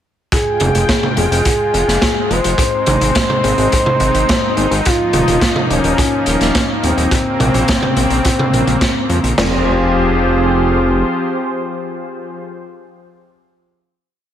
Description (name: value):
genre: synthwave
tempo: 106 BPM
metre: 4/4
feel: straight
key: F minor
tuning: A4 = 441 Hz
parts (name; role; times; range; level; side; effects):
- expressive portamento lead; melody; 0.3-12.4 s; C4 to C5; -18 LUFS; equal; chorus, digital delay
- warm analog pad; sustained chords; 0.3-12.4 s; Db3 to G5; -19 LUFS; left 1 dB; lush chorus, sidechain pumping
- raw garage drum kit; drums; 0.3-9.5 s; crash cymbal, kick drum, snare drum, toms; -19 LUFS; equal; gated reverb
- raw garage drum kit; drums; 0.3-9.4 s; hi-hat, snare drum, toms; -18 LUFS; equal; gated reverb
- fat analog bass; bass; 0.6-11.0 s; Eb1 to F2; -17 LUFS; equal; none
room: light reverb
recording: none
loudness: -12 LUFS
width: side -10 dB against mid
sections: 0.3-9.4 chorus; 9.4-11.6 final chord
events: none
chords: 0.3 Fmadd9; 2.6 Ab; 4.9 Ebsus2; 7.1 Bbmadd9; 9.4 Fmadd9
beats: | 0.32 0.89 1.46 2.02 | 2.59 3.15 3.72 4.29 | 4.85 5.42 5.98 6.55 | 7.12 7.68 8.25 8.81 | 9.38 9.95 10.51 11.08